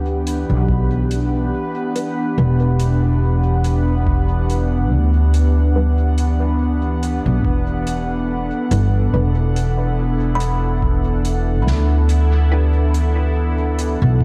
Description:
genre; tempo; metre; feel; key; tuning
ambient dub; 71 BPM; 4/4; swing 55% on 16ths; E minor; A4 = 440 Hz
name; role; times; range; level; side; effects
airy breathy pad; sustained chords; 0.0-14.2 s; E3 to F#5; -25 LUFS; equal; chorus, vintage 12-bit sampler grit
upright bass; bass; 0.0-14.2 s; E1 to D2; -19 LUFS; equal; tube saturation
bubbling stepped-filter texture; texture; 0.0-14.2 s; B3 to B4; -31 LUFS; equal; chorus, built-in reverb
soft-mallet drum kit; drums; 0.3-14.0 s; hi-hat, snare drum; -34 LUFS; equal; dub echo
electronic kick drum; drums; 0.7-14.2 s; none; -24 LUFS; equal; overdrive
filtered dub chord stab; stabs; 2.0-12.8 s; G3 to B4; -33 LUFS; equal; none
kalimba; arpeggios; 10.4-12.6 s; B5; -33 LUFS; equal; tape echo
room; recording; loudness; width
small room ambience; dark, warm production; -18 LUFS; mono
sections
0.0-14.2 A section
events
none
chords
0.0 Em7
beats
0.69 1.53 | 2.38 3.22 4.07 4.91 | 5.76 6.60 7.45 8.29 | 9.14 9.98 10.83 11.67 | 12.52 13.36 14.21

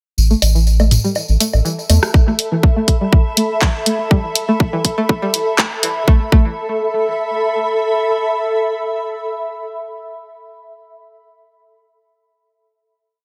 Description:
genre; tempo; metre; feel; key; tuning
minimal techno; 122 BPM; 4/4; swing 53% on 16ths; unclear; A4 = 440 Hz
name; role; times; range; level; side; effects
round analog bass; bass; 0.2-2.0 s; A1 to E2; -14 LUFS; equal; sidechain pumping
tambourine; percussion; 0.2-2.1 s; none; -26 LUFS; equal; dub echo
granular cloud pad; texture; 1.5-10.4 s; A4 to B5; -22 LUFS; equal; built-in reverb, sidechain pumping
string-like resonator pluck; riff; 0.3-6.5 s; E3 to A3; -23 LUFS; equal; chorus, sidechain pumping, analog delay
garage drum kit; drums; 0.4-5.9 s; handclaps, hi-hat; -19 LUFS; equal; low-pass filter on hats, low-pass filter on snare
booming analog drum machine; percussion; 0.4-2.1 s; rim click, toms, woodblock; -23 LUFS; equal; dub echo
electronic kick drum; drums; 2.1-6.5 s; none; -14 LUFS; equal; none
room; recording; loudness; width
light reverb; echo-heavy mix, high-pass filter; -16 LUFS; mono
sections
0.2-2.1 intro; 2.1-6.1 build; 6.1-10.0 final chord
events
filter sweep on synth pluck 0.2-2.1, 2.1-6.1; build-up 2.1-6.1; filter sweep 2.1-6.1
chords
0.2 A5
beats
| 0.17 0.67 1.16 1.65 | 2.14 2.63 3.13 3.62 | 4.11 4.60 5.09 5.58 | 6.08 6.57 7.06 7.55 | 8.04 8.54 9.03 9.52

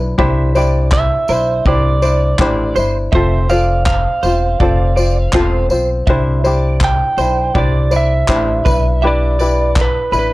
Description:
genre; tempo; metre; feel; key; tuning
acoustic pop; 81 BPM; 4/4; swing 60% on 16ths; C major; A4 = 440 Hz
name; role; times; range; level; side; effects
tenor ukulele; accompaniment; 0.0-10.3 s; C4 to C5; -18 LUFS; left 2 dB; none
upright bass; bass; 0.0-10.3 s; E1 to C2; -16 LUFS; equal; none
direct-recorded clean electric guitar; arpeggios; 0.2-10.3 s; B4 to E5; -24 LUFS; right 7 dB; ensemble chorus
loose indie drum kit; drums; 0.2-10.3 s; handclaps, kick drum, tambourine; -19 LUFS; equal; none
electric slide guitar; melody; 0.9-10.3 s; B4 to G5; -18 LUFS; right 2 dB; none
room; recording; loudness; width
little or no reverb; cassette tape; -12 LUFS; side -18 dB against mid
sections
0.0-10.3 A section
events
none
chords
0.2 Cadd9; 3.1 F; 6.1 Cadd9; 8.7 Em7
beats
| 0.18 0.92 1.65 2.39 | 3.12 3.86 4.60 5.33 | 6.07 6.81 7.55 8.28 | 9.02 9.76

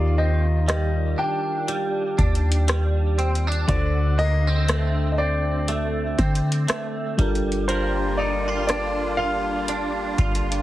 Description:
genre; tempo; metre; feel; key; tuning
contemporary R&B; 60 BPM; 4/4; swing 58% on 16ths; G minor; A4 = 440 Hz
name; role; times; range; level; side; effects
warm grand piano; melody; 0.0-10.6 s; C5 to G5; -28 LUFS; equal; digital delay
mellow FM electric piano; accompaniment; 0.0-10.6 s; D3 to F5; -29 LUFS; left 2 dB; chorus
direct-recorded clean electric guitar; arpeggios; 0.0-10.6 s; D3 to Bb4; -28 LUFS; right 2 dB; ensemble chorus, digital delay
clean 808-style bass; bass; 0.0-10.6 s; G1 to D3; -23 LUFS; equal; none
booming analog drum machine; drums; 0.7-10.6 s; hi-hat, kick drum, rim click; -24 LUFS; equal; none
musette accordion; sustained chords; 7.7-10.6 s; G3 to F4; -29 LUFS; equal; none
room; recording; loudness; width
light reverb; heavily compressed radio sound, multiband compression; -20 LUFS; side -15 dB against mid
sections
0.0-10.6 A section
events
none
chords
0.0 Ebmaj9; 3.7 D7; 7.2 Gm7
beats
0.69 1.69 2.69 | 3.69 4.68 5.68 6.68 | 7.68 8.69 9.69

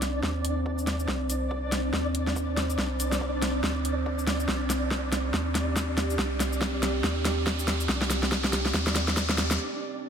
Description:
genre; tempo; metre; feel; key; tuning
deep dubstep; 141 BPM; 4/4; swing 59% on 16ths, half-time; C minor; A4 = 440 Hz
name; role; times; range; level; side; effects
deep dark ambient pad; sustained chords; 0.0-10.1 s; C4 to C5; -33 LUFS; right 3 dB; chorus, built-in reverb
soft dub sub bass; bass; 0.0-9.6 s; C2 to Eb2; -30 LUFS; equal; none
deep house drum kit; drums; 0.0-9.6 s; hi-hat, shaker, snare drum; -29 LUFS; equal; studio reverb
riser; sound effects; 0.0-9.6 s; none; -36 LUFS; right 1 dB; none
flickering grainy texture; texture; 0.0-9.6 s; D4 to D5; -34 LUFS; left 1 dB; built-in reverb
electronic kick drum; drums; 0.2-9.3 s; none; -44 LUFS; equal; none
room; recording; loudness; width
light reverb; none; -25 LUFS; side -7 dB against mid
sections
0.0-10.1 A section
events
build-up 0.0-10.1; drum fill 0.0-9.6; riser 0.0-9.6; break 9.6-10.1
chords
0.0 Cmadd9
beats
0.23 0.66 | 1.08 1.51 1.94 2.36 | 2.79 3.21 3.64 4.06 | 4.49 4.91 5.34 5.76 | 6.19 6.62 7.04 7.47 | 7.89 8.32 8.74 9.17 | 9.60 10.02

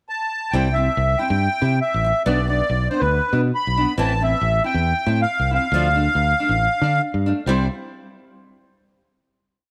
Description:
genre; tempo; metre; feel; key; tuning
highlife guitar band; 138 BPM; 4/4; straight; C major; A4 = 442 Hz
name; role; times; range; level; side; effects
accordion; melody; 0.1-7.7 s; B4 to B5; -23 LUFS; equal; light tremolo tuning
nylon-string guitar; accompaniment; 0.5-7.7 s; E3 to E4; -28 LUFS; equal; none
fingered electric bass; bass; 0.5-7.7 s; A1 to D3; -23 LUFS; equal; none
room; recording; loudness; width
moderate echo chamber reverb, RT60 2.1 s; none; -20 LUFS; mono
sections
0.0-0.5 pickup bar; 0.5-7.5 groove; 7.5-9.2 final chord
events
none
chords
0.0 N.C.; 0.5 C; 2.3 G/B (rootless); 4.0 Am; 5.7 Dm; 7.5 C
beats
0.11 | 0.54 0.97 1.40 1.83 | 2.27 2.70 3.13 3.56 | 4.00 4.43 4.86 5.30 | 5.73 6.17 6.60 7.04 | 7.47

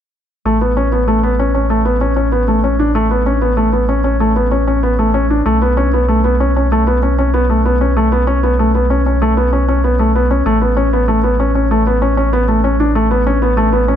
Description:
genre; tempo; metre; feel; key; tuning
piano and strings electronica; 96 BPM; 4/4; straight; unclear; A4 = 440 Hz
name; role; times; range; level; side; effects
felt-muted upright piano; riff; 0.5-14.0 s; A3 to D4; -14 LUFS; left 2 dB; ping-pong delay
warm sub bass; bass; 0.5-14.0 s; A1 to B1; -16 LUFS; right 1 dB; none
room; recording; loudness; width
moderate concert hall reverb, RT60 2.3 s; none; -12 LUFS; side -9 dB against mid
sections
0.5-14.0 A section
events
filter sweep on sub bass 0.5-14.0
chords
0.5 A; 5.5 Bsus2; 10.5 A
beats
| 0.46 1.08 1.71 2.33 | 2.96 3.58 4.21 4.83 | 5.46 6.08 6.71 7.33 | 7.96 8.58 9.21 9.83 | 10.46 11.08 11.71 12.33 | 12.96 13.58

